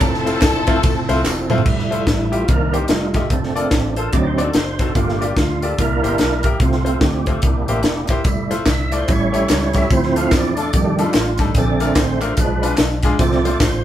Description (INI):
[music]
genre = uptempo gospel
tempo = 146 BPM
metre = 4/4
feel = swing 62% on 8ths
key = F major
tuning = A4 = 441 Hz
[part]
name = warm studio string section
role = melody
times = 0.0-1.5 s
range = C4 to A4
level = -21 LUFS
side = left 2 dB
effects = none
[part]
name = percussive tonewheel organ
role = sustained chords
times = 0.0-13.8 s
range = D3 to F5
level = -21 LUFS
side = right 3 dB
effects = fast rotary speaker, overdrive, chorus vibrato
[part]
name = fingered electric bass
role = bass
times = 0.0-13.8 s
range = E1 to F2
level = -23 LUFS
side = equal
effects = none
[part]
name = crisp fusion drum kit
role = drums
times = 0.0-13.7 s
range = crash cymbal, hi-hat, kick drum, ride cymbal, snare drum, toms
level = -18 LUFS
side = equal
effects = none
[part]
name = tambourine and handclaps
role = percussion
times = 0.0-1.6, 8.3-13.7 s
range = none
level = -31 LUFS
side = right 1 dB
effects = none
[part]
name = bright grand piano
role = accompaniment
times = 0.3-13.8 s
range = G2 to Eb5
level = -24 LUFS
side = left 3 dB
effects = none
[part]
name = mellow French horn section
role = sustained chords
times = 1.7-13.8 s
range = D3 to F4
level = -31 LUFS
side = equal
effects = none
[sound]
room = moderate large studio reverb, RT60 0.9 s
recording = band playing live in one room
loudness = -15 LUFS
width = side -12 dB against mid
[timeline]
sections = 0.0-1.7 A section; 1.7-13.8 B section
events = drum fill 1.2-1.7; tonewheel organ solo 1.7-13.8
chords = 0.0 Fmaj7; 2.5 Cm7; 2.9 F9; 3.3 Bbmaj7/F; 4.1 D7b9; 5.0 Gm7; 5.8 C7; 6.6 F/C; 7.4 C7; 8.3 Fmaj7; 9.1 A7; 9.9 Dm7; 10.7 F13; 11.6 Bbmaj7; 12.4 Bdim7; 13.2 F/C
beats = | 0.01 0.42 0.83 1.24 | 1.66 2.07 2.48 2.89 | 3.31 3.72 4.13 4.55 | 4.96 5.37 5.78 6.20 | 6.61 7.02 7.43 7.85 | 8.26 8.67 9.08 9.49 | 9.91 10.32 10.73 11.14 | 11.55 11.96 12.38 12.79 | 13.20 13.61